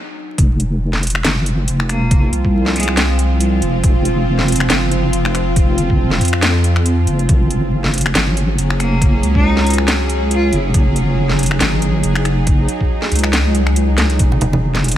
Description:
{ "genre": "deep dubstep", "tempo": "139 BPM", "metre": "4/4", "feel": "swing 56% on 16ths, half-time", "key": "F phrygian", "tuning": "A4 = 436 Hz", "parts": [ { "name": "bowed-like drone", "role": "sustained chords", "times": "0.4-15.0 s", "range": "F3 to Ab4", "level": "-21 LUFS", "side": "right 1 dB", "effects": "built-in reverb" }, { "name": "deep soft wobble bass", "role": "bass", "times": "0.4-15.0 s", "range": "F1 to F2", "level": "-16 LUFS", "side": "equal", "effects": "chorus" }, { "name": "electronic kick drum", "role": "drums", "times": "0.4-14.3 s", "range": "none", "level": "-14 LUFS", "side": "equal", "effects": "none" }, { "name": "garage drum kit", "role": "drums", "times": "0.4-15.0 s", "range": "finger snaps, hi-hat, snare drum", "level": "-19 LUFS", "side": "equal", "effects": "none" }, { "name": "bright cello", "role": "melody", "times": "1.9-3.1, 8.8-10.7 s", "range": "Ab3 to F4", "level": "-24 LUFS", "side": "equal", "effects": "dub echo" }, { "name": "congas", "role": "percussion", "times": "14.3-14.8 s", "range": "none", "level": "-19 LUFS", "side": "right 2 dB", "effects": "none" } ], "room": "little or no reverb", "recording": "vinyl crackle", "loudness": "-13 LUFS", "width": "side -12 dB against mid", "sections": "0.4-15.0 A section", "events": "break 0.0-0.4; drop 0.4-15.0; drum fill 14.0", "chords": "0.4 F5; 7.3 Gbsus2; 14.2 F5", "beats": "| 0.38 0.81 1.25 1.68 | 2.11 2.54 2.97 3.40 | 3.84 4.27 4.70 5.13 | 5.56 6.00 6.43 6.86 | 7.29 7.72 8.15 8.59 | 9.02 9.45 9.88 10.31 | 10.74 11.17 11.61 12.04 | 12.47 12.90 13.33 13.76 | 14.20 14.63" }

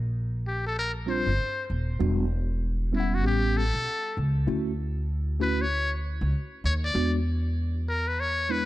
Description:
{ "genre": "hip hop, jazz-hop", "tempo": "97 BPM", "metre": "4/4", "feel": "swing 61% on 16ths", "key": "unclear", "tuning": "A4 = 440 Hz", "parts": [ { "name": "upright bass", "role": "bass", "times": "0.0-8.6 s", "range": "Eb1 to E2", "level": "-27 LUFS", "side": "equal", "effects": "none" }, { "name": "trumpet with metal mute", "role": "melody", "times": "0.5-8.7 s", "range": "E4 to D5", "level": "-30 LUFS", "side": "left 2 dB", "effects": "none" }, { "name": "mellow tine electric piano", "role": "accompaniment", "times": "1.1-8.7 s", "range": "G3 to Gb5", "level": "-31 LUFS", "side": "equal", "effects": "medium stereo tremolo" } ], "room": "light reverb, studio ambience", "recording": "dark, warm production", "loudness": "-25 LUFS", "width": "side -16 dB against mid", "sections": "0.0-8.7 A section", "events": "none", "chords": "0.0 Bbsus2; 2.0 Em7; 3.2 A13; 4.5 Dmaj7; 6.9 E9", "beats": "0.14 0.76 1.38 | 2.00 2.62 3.24 3.86 | 4.47 5.09 5.71 6.33 | 6.95 7.57 8.19" }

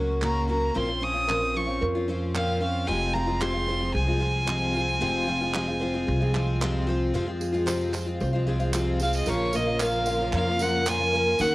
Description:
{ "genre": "indie folk with a building arrangement", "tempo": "113 BPM", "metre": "4/4", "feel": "straight", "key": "Bb minor", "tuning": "A4 = 440 Hz", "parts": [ { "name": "picked twelve-string acoustic guitar", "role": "accompaniment", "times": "0.0-11.5 s", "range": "F2 to Gb4", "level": "-28 LUFS", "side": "left 2 dB", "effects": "cassette tape, plate reverb" }, { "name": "nylon-string guitar", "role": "arpeggios", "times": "0.0-11.5 s", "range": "Bb3 to F5", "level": "-32 LUFS", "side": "right 2 dB", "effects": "cassette tape, plate reverb" }, { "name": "upright bass", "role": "bass", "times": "0.0-11.5 s", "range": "F1 to F2", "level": "-28 LUFS", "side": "equal", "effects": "none" }, { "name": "clear fiddle", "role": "melody", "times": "0.2-11.5 s", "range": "Db5 to Eb6", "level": "-27 LUFS", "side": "equal", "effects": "cassette tape, plate reverb" }, { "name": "group handclap", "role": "percussion", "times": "0.2-11.0 s", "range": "none", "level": "-33 LUFS", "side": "right 3 dB", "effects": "none" }, { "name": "tambourine", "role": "percussion", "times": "7.1-11.5 s", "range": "none", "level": "-38 LUFS", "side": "right 4 dB", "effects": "none" }, { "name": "warm studio string section", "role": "sustained chords", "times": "9.3-11.5 s", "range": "Db3 to Bb4", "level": "-34 LUFS", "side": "equal", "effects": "cassette tape, plate reverb" } ], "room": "light reverb", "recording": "home recording on cassette", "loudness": "-23 LUFS", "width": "side -19 dB against mid", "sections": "0.0-7.1 A section; 7.1-9.3 B section; 9.3-11.5 C section", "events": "none", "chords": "0.0 Gb; 0.8 Bbmadd9; 2.9 Fm; 9.3 Bbm", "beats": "0.22 | 0.75 1.29 1.82 2.35 | 2.88 3.42 3.95 4.48 | 5.02 5.55 6.08 6.61 | 7.15 7.68 8.21 8.74 | 9.27 9.80 10.34 10.87 | 11.40" }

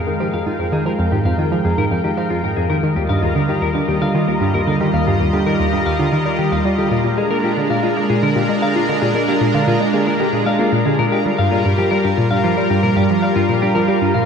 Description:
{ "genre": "ambient, sequencer-driven space music", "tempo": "114 BPM", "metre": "4/4", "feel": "straight", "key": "unclear", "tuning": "A4 = 437 Hz", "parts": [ { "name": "lush unison pad", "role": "sustained chords", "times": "0.0-14.3 s", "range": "G3 to G5", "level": "-19 LUFS", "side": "right 1 dB", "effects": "chorus" }, { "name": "bubbling stepped-filter texture", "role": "texture", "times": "0.0-14.3 s", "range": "Bb4 to Bb5", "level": "-26 LUFS", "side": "left 2 dB", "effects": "chorus, built-in reverb" }, { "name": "analog pluck", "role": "riff", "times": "0.1-14.3 s", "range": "Eb2 to Bb3", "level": "-19 LUFS", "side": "equal", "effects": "chorus, vintage 12-bit sampler grit, tape echo" }, { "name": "semi-hollow electric guitar", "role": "arpeggios", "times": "0.2-14.3 s", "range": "F4 to F5", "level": "-22 LUFS", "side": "left 4 dB", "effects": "auto-pan, tape echo" } ], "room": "wet plate reverb, RT60 2.9 s", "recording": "echo-heavy mix", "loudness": "-15 LUFS", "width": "side -6 dB against mid", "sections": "0.0-14.3 A section", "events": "none", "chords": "0.0 Fmadd9; 2.8 Ebadd9; 7.0 Bb7; 11.3 Gm7", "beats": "0.20 | 0.73 1.25 1.78 2.31 | 2.83 3.36 3.89 4.41 | 4.94 5.46 5.99 6.52 | 7.04 7.57 8.10 8.62 | 9.15 9.68 10.20 10.73 | 11.25 11.78 12.31 12.83 | 13.36 13.89" }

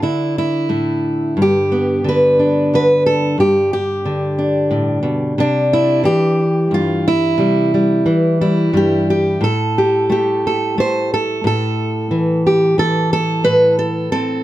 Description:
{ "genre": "folk, solo fingerstyle acoustic guitar", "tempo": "90 BPM", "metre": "3/4", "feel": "straight", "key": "unclear", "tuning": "A4 = 440 Hz", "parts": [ { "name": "fingerpicked steel-string acoustic guitar", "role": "solo", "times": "0.0-14.4 s", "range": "G2 to C5", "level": "-14 LUFS", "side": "equal", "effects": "none" } ], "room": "light reverb", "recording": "dark, warm production", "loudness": "-13 LUFS", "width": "side -14 dB against mid", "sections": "0.0-9.4 A section; 9.4-14.4 B section", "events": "none", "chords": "0.0 D5; 1.4 G; 5.4 C; 9.4 Am", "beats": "0.02 0.69 | 1.37 2.05 2.72 | 3.39 4.06 4.72 | 5.38 6.05 6.72 | 7.38 8.05 8.73 | 9.41 10.09 10.77 | 11.44 12.11 12.77 | 13.44 14.10" }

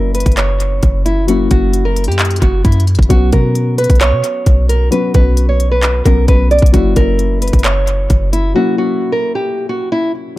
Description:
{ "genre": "hip hop, trap", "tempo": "132 BPM", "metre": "4/4", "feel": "half-time", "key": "unclear", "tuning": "A4 = 441 Hz", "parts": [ { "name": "nylon-string guitar", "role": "melody", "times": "0.0-10.1 s", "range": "E4 to D5", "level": "-17 LUFS", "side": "right 2 dB", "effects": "low-pass filter, tape echo" }, { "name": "felt-muted upright piano", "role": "accompaniment", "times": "0.0-10.4 s", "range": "F#3 to F#4", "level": "-19 LUFS", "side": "left 5 dB", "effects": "low-pass filter, tape echo" }, { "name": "clean 808-style bass", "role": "bass", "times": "0.0-8.5 s", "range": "F#1 to B2", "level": "-13 LUFS", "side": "equal", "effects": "none" }, { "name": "trap drum kit", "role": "drums", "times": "0.1-8.4 s", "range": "handclaps, hi-hat, kick drum", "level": "-14 LUFS", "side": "equal", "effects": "none" } ], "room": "digital ambience", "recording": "echo-heavy mix", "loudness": "-10 LUFS", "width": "side -17 dB against mid", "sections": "0.0-10.4 A section", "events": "break 8.6-10.4", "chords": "0.0 F#7; 3.1 Bsus2; 6.7 F#7", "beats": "0.37 0.83 | 1.28 1.74 2.19 2.65 | 3.10 3.56 4.01 4.46 | 4.92 5.37 5.83 6.28 | 6.74 7.19 7.65 8.10 | 8.55 9.01 9.46 9.92 | 10.37" }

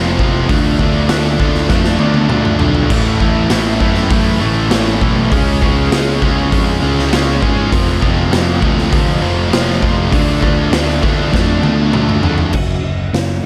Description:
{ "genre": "quiet-loud alternative rock", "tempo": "100 BPM", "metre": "4/4", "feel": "straight", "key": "unclear", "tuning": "A4 = 440 Hz", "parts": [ { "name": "fuzz guitar", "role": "riff", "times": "0.0-12.5 s", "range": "F2 to D4", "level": "-21 LUFS", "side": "equal", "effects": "distortion" }, { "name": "heavy high-gain guitar", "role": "riff", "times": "0.0-12.5 s", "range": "F2 to D4", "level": "-23 LUFS", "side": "equal", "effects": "distortion" }, { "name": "overdriven electric guitar", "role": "riff", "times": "0.0-12.5 s", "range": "A2 to F4", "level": "-22 LUFS", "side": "equal", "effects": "none" }, { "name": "picked electric bass", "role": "bass", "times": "0.0-13.4 s", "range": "F1 to G#2", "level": "-20 LUFS", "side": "equal", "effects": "none" }, { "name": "raw garage drum kit", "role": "drums", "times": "0.2-13.3 s", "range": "crash cymbal, hi-hat, kick drum, snare drum, toms", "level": "-18 LUFS", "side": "equal", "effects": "none" }, { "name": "twelve-string electric guitar", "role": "arpeggios", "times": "12.5-13.5 s", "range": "F#2 to F#3", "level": "-25 LUFS", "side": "equal", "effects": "tremolo, analog delay" } ], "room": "light reverb, studio reverb", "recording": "none", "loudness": "-14 LUFS", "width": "mono", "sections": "0.0-12.5 A section", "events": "drum fill 1.7-2.9, 11.3-12.5", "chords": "0.5 Dm; 2.9 A; 5.3 C#; 7.7 F; 10.1 Dm; 12.5 F#5", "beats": "| 0.49 1.10 1.70 2.30 | 2.90 3.50 4.11 4.71 | 5.31 5.91 6.51 7.11 | 7.71 8.32 8.92 9.52 | 10.12 10.72 11.33 11.93 | 12.54 13.14" }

